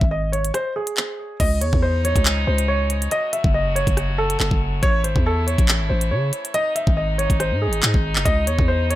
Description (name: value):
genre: hip hop, drill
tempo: 140 BPM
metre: 4/4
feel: half-time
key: C# harmonic minor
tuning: A4 = 440 Hz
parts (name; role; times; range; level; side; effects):
- dark concert grand piano; melody; 0.0-9.0 s; G#4 to E5; -23 LUFS; equal; ping-pong delay
- growling 808-style bass; bass; 0.0-9.0 s; F#1 to C#3; -21 LUFS; equal; none
- drill drum kit; drums; 0.0-9.0 s; crash cymbal, handclaps, hi-hat, kick drum, rim click; -20 LUFS; equal; none
- muted French horn section; sustained chords; 1.4-9.0 s; B#2 to F#4; -30 LUFS; equal; none
room: little or no reverb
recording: none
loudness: -18 LUFS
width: side -15 dB against mid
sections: 0.0-1.4 A section; 1.4-9.0 B section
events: break 0.5-1.4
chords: 0.0 N.C.; 1.4 C#madd9; 3.1 F#m; 4.8 A; 6.5 G#; 8.3 C#madd9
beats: 0.11 0.54 0.97 | 1.40 1.83 2.26 2.69 | 3.11 3.54 3.97 4.40 | 4.83 5.26 5.68 6.11 | 6.54 6.97 7.40 7.83 | 8.26 8.69